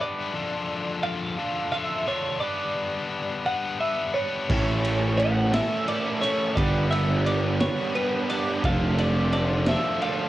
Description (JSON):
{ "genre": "indie rock", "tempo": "58 BPM (dotted quarters)", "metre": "6/8", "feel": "straight", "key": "unclear", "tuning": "A4 = 441 Hz", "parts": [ { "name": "twelve-string electric guitar", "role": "melody", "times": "0.0-10.3 s", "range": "B4 to F#5", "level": "-28 LUFS", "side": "equal", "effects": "lush chorus, cassette tape" }, { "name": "high-gain distorted guitar", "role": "riff", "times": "0.0-10.3 s", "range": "A2 to B4", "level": "-29 LUFS", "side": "left 4 dB", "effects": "distortion" }, { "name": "fuzz guitar", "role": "riff", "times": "4.5-10.3 s", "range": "F3 to A4", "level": "-28 LUFS", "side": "right 5 dB", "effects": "distortion, lush chorus" }, { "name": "fuzz picked electric bass", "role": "bass", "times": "4.5-9.7 s", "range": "F1 to A1", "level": "-24 LUFS", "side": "equal", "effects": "overdrive" }, { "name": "raw garage drum kit", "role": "drums", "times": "4.5-10.2 s", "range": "crash cymbal, kick drum, ride cymbal, snare drum", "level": "-29 LUFS", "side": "equal", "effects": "cassette tape" } ], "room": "little or no reverb", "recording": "home recording on cassette", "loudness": "-22 LUFS", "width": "side -15 dB against mid", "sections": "0.0-10.3 A section", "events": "none", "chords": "0.3 Dm; 2.4 G; 4.5 A; 6.6 G; 8.6 Dm/F" }